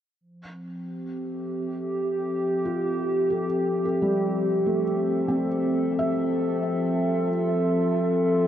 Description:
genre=ambient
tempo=71 BPM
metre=4/4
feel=straight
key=F major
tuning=A4 = 440 Hz
part: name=warbly tape-like pad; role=sustained chords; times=0.6-8.5 s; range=F3 to E5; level=-24 LUFS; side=equal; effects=chorus, built-in reverb
part: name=felt-muted upright piano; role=arpeggios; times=2.7-8.5 s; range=G3 to E5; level=-29 LUFS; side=equal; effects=ping-pong delay
room=wet huge ambient reverb, RT60 7.6 s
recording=worn, warbling old tape, cassette tape, warbly pitch drift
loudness=-23 LUFS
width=side -10 dB against mid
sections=0.2-8.5 A section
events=none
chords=0.2 Fmaj9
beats=| 0.20 1.04 1.89 2.73 | 3.58 4.42 5.27 6.11 | 6.96 7.80

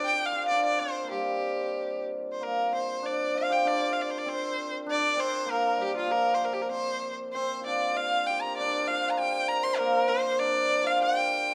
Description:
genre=chinese traditional, Chinese chamber ensemble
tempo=97 BPM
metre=2/4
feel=rubato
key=G yu mode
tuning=A4 = 443 Hz
part: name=clear erhu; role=melody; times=0.0-11.5 s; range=F4 to C6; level=-31 LUFS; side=equal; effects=none
part: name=hammered dulcimer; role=second line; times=0.0-11.5 s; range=F3 to C5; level=-30 LUFS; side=equal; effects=none
room=moderate recital hall reverb, RT60 1.6 s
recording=none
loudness=-28 LUFS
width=mono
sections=0.0-2.4 A section; 2.4-11.5 B section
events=none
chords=none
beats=0.51 | 1.13 1.76 | 2.40 3.03 | 3.66 4.27 | 4.88 5.49 | 6.10 6.71 | 7.34 7.97 | 8.58 9.19 | 9.79 10.40 | 11.02

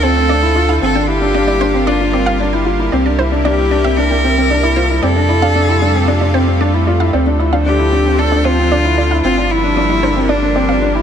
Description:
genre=piano and strings electronica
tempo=114 BPM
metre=4/4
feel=straight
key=unclear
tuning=A4 = 440 Hz
part: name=clear cello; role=melody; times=0.0-11.0 s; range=D4 to Bb4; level=-17 LUFS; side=left 1 dB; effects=ping-pong delay
part: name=lush unison pad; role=sustained chords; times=0.0-11.0 s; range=C3 to F4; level=-20 LUFS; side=right 1 dB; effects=chorus
part: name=wide unison pluck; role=arpeggios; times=0.0-11.0 s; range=C5 to G5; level=-24 LUFS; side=right 3 dB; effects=ping-pong delay
part: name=felt-muted upright piano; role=riff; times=0.0-11.0 s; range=C4 to F4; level=-17 LUFS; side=left 2 dB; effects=ping-pong delay
part: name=warm sub bass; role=bass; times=0.0-11.0 s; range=G1 to F2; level=-17 LUFS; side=equal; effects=none
room=light reverb, studio reverb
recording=none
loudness=-11 LUFS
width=side -8 dB against mid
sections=0.0-11.0 A section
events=none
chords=0.0 Dm7; 0.8 Gm7; 2.9 C7; 5.0 Fadd9; 7.1 Dm7; 9.2 Gm7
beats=0.29 | 0.82 1.34 1.87 2.40 | 2.92 3.45 3.98 4.50 | 5.03 5.56 6.08 6.61 | 7.13 7.66 8.19 8.71 | 9.24 9.77 10.29 10.82

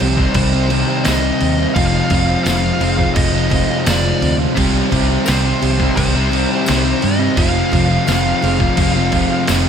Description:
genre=rock, shoegaze and dream pop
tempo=85 BPM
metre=4/4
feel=straight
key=C minor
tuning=A4 = 442 Hz
part: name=fuzz lead guitar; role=melody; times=0.0-9.5 s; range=C5 to F5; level=-22 LUFS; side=left 1 dB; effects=distortion, diffuse ambient delay
part: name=picked twelve-string acoustic guitar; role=arpeggios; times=0.0-9.7 s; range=G3 to Ab4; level=-26 LUFS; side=right 5 dB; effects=analog chorus, diffuse ambient delay
part: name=crunchy overdriven guitar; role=riff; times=0.0-9.7 s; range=C3 to G4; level=-21 LUFS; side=right 10 dB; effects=reverse reverb
part: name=thick fuzz guitar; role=riff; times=0.0-9.7 s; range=F2 to C4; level=-19 LUFS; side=left 9 dB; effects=distortion, wide subtle chorus
part: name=vintage muted fingered electric bass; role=bass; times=0.0-9.7 s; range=F1 to G2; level=-19 LUFS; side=equal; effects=none
part: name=detuned 8-bit digital drum machine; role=drums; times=0.0-9.6 s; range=crash cymbal, kick drum, snare drum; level=-20 LUFS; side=right 1 dB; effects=none
part: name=tambourine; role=percussion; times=1.1-9.6 s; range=none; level=-30 LUFS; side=left 12 dB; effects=none
part: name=biting overdriven guitar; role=riff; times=4.6-9.7 s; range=F2 to C4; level=-24 LUFS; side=right 1 dB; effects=none
room=light reverb, digital ambience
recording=none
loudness=-13 LUFS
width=side -8 dB against mid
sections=0.0-9.7 A section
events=none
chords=0.0 Cm; 1.8 Fm7; 4.6 Cm; 7.4 Fm7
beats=0.35 1.05 | 1.76 2.46 3.16 3.86 | 4.56 5.27 5.97 6.67 | 7.37 8.08 8.78 9.48

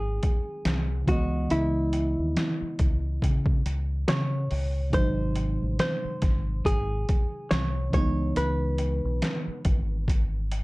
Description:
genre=lo-fi hip hop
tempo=70 BPM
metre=4/4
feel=swing 58% on 16ths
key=C# minor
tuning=A4 = 435 Hz
part: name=hollow-body jazz guitar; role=melody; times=0.0-10.0 s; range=E4 to C#5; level=-31 LUFS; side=equal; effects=low-pass filter
part: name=reed electric piano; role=accompaniment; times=0.0-10.6 s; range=B#2 to D#5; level=-33 LUFS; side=right 1 dB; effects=overdrive, low-pass filter
part: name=deep dub fingered electric bass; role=bass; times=0.0-10.6 s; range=G#1 to C#3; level=-28 LUFS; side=equal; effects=none
part: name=trip hop sampler-style drum kit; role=drums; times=0.2-10.6 s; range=hi-hat, kick drum, snare drum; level=-26 LUFS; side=equal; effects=overdrive
room=light reverb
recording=dark, warm production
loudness=-24 LUFS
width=side -22 dB against mid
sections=0.0-10.6 A section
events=none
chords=0.0 G#7; 1.1 C#m9; 4.9 G#7; 7.9 C#m9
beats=0.65 | 1.50 2.36 3.22 4.08 | 4.93 5.79 6.65 7.50 | 8.36 9.22 10.07

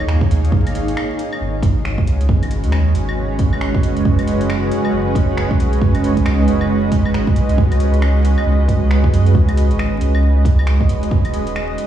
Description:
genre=future garage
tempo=136 BPM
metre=4/4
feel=swing 61% on 16ths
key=unclear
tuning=A4 = 439 Hz
part: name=granular cloud pad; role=sustained chords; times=0.0-11.9 s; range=Ab3 to F5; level=-19 LUFS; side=right 1 dB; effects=built-in reverb, vintage 12-bit sampler grit, sidechain pumping
part: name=warm sub bass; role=bass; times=0.0-11.8 s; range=Eb1 to Gb2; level=-16 LUFS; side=right 1 dB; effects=tube saturation, sidechain pumping
part: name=deep house drum kit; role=drums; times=0.0-11.9 s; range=claves, finger snaps, hi-hat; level=-30 LUFS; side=equal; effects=overdrive, studio reverb
part: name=electronic kick drum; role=drums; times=0.2-11.2 s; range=none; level=-17 LUFS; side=right 1 dB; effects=overdrive, studio reverb
room=little or no reverb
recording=played on a big sound system in a bare room, stone room reverb, vinyl crackle, studio ambience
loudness=-14 LUFS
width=side -10 dB against mid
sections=0.0-11.9 A section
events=none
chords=0.0 Eb7(no3); 0.5 Abm; 4.1 Gbsus2; 7.6 Dbsus4; 11.1 Ebm7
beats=0.08 | 0.53 0.97 1.41 1.85 | 2.29 2.73 3.17 3.61 | 4.05 4.50 4.94 5.38 | 5.82 6.26 6.70 7.14 | 7.58 8.03 8.47 8.91 | 9.35 9.79 10.23 10.67 | 11.11 11.55

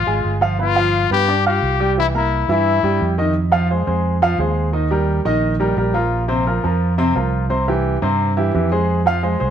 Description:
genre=latin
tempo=174 BPM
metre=4/4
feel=straight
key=F minor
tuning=A4 = 439 Hz
part: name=bright trumpet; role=melody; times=0.0-3.2 s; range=E4 to G4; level=-19 LUFS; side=left 9 dB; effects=none
part: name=fingered electric bass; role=bass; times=0.0-9.5 s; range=G1 to G2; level=-20 LUFS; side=right 2 dB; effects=none
part: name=clear baby grand piano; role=accompaniment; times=0.1-9.5 s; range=C3 to F6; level=-19 LUFS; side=equal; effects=none
room=light reverb, studio ambience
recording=none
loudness=-15 LUFS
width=side -9 dB against mid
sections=0.0-3.4 A section; 3.4-9.5 B section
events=none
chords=0.0 Db (rootless); 0.6 G7; 2.0 C7; 3.4 Fm7; 4.7 Eb; 6.1 Bbsus2; 7.5 C; 8.9 Fm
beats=0.25 | 0.59 0.94 1.28 1.63 | 1.97 2.32 2.67 3.01 | 3.35 3.70 4.04 4.39 | 4.74 5.08 5.43 5.77 | 6.12 6.46 6.81 7.15 | 7.50 7.84 8.19 8.54 | 8.88 9.23

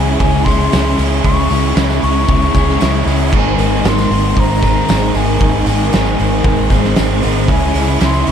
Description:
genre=rock, shoegaze and dream pop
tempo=116 BPM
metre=4/4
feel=straight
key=Ab major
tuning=A4 = 440 Hz
part: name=breathy mellow concert flute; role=melody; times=0.0-8.3 s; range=Ab5 to Db6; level=-21 LUFS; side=left 4 dB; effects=analog delay
part: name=electric guitar through a small old amp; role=arpeggios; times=0.0-8.3 s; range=Eb3 to Ab4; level=-24 LUFS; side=equal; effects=ensemble chorus, analog delay
part: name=biting overdriven guitar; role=riff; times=0.0-8.3 s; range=Ab2 to Ab4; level=-20 LUFS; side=right 13 dB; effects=reverse reverb
part: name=crunchy overdriven guitar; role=riff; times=0.0-8.3 s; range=Ab2 to Fb4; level=-20 LUFS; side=right 1 dB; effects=none
part: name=thick fuzz guitar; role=riff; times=0.0-8.3 s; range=Ab2 to Db4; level=-20 LUFS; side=left 12 dB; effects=distortion, analog chorus
part: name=vintage muted fingered electric bass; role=bass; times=0.0-8.3 s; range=Ab1 to Db2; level=-17 LUFS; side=equal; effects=none
part: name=loose indie drum kit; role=drums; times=0.2-8.3 s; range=crash cymbal, hi-hat, kick drum, snare drum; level=-17 LUFS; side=right 1 dB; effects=none
part: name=tambourine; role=percussion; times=0.5-8.3 s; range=none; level=-36 LUFS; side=left 11 dB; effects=none
room=small room ambience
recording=dark, warm production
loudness=-11 LUFS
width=side -8 dB against mid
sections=0.0-8.3 A section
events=none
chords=0.0 Dbm; 3.3 Abadd9; 7.5 Dbm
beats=0.21 0.73 | 1.25 1.77 2.29 2.81 | 3.33 3.85 4.37 4.89 | 5.41 5.93 6.45 6.97 | 7.49 8.01

